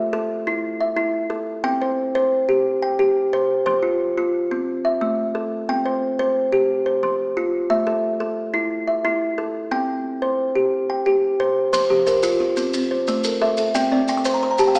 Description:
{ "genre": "southern african traditional, mbira-style interlocking cycle", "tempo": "119 BPM (dotted quarters)", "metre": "12/8", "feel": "straight", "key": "unclear", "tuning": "A4 = 440 Hz", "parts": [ { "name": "kalimba", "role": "arpeggios", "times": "0.0-14.8 s", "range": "F3 to G5", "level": "-18 LUFS", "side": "equal", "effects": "none" }, { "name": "maracas", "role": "percussion", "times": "11.7-14.8 s", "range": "none", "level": "-29 LUFS", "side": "equal", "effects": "none" }, { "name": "kalimba", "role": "arpeggios", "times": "11.9-14.8 s", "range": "F3 to D6", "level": "-23 LUFS", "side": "equal", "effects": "none" } ], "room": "wet scoring stage reverb, RT60 1.7 s", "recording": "recorded in a church or concert hall, small speaker sound", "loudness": "-18 LUFS", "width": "side -37 dB against mid", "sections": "0.0-11.7 A section; 11.7-14.8 A section", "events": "kalimba fill 14.0-14.8", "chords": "0.0 A5; 1.6 C5; 3.7 F5; 4.7 A5; 5.7 C5; 6.7 F5; 7.7 A5; 9.7 C5; 11.7 F5; 12.7 Am; 13.7 C" }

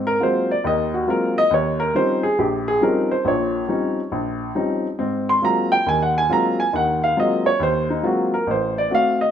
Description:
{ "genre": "solo jazz", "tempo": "138 BPM", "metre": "4/4", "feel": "swing 67% on 8ths", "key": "unclear", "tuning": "A4 = 440 Hz", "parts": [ { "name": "warm baby grand piano", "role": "solo", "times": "0.0-9.3 s", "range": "A1 to C6", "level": "-18 LUFS", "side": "equal", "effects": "none" } ], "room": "moderate large studio reverb, RT60 1.1 s", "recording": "minimal, uncompressed stereo recording", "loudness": "-18 LUFS", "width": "side -9 dB against mid", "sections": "0.0-9.3 A section", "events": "grand piano solo 0.0-9.3", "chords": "0.0 Ab13; 1.5 Eb13; 5.0 Ab13; 8.5 Am6" }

